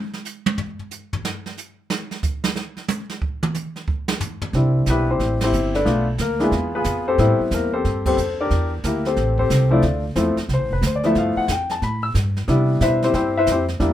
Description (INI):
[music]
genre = jazz piano trio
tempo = 182 BPM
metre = 4/4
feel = swing 64% on 8ths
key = C major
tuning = A4 = 440 Hz
[part]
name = jazz brush drum kit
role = drums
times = 0.1-13.9 s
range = brushed snare drum, hi-hat, kick drum, ride cymbal, snare drum, toms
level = -26 LUFS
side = right 3 dB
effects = none
[part]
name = warm grand piano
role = melody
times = 4.5-13.9 s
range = F3 to E6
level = -20 LUFS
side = left 2 dB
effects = none
[part]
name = upright bass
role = bass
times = 4.5-13.9 s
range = F1 to C3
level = -21 LUFS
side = right 1 dB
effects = none
[sound]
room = moderate club reverb, RT60 0.5 s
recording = minimal, uncompressed stereo recording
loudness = -18 LUFS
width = side -12 dB against mid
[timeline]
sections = 0.0-4.5 A section; 4.5-13.9 B section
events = drum solo 0.0-4.5; band accent 5.4, 8.0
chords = 0.0 N.C.; 4.5 Cmaj9; 5.9 Bm7b5; 6.5 E; 7.2 Am7; 8.5 Em7b5; 9.2 Am7; 9.8 Dm9; 11.2 G13; 12.5 Cmaj9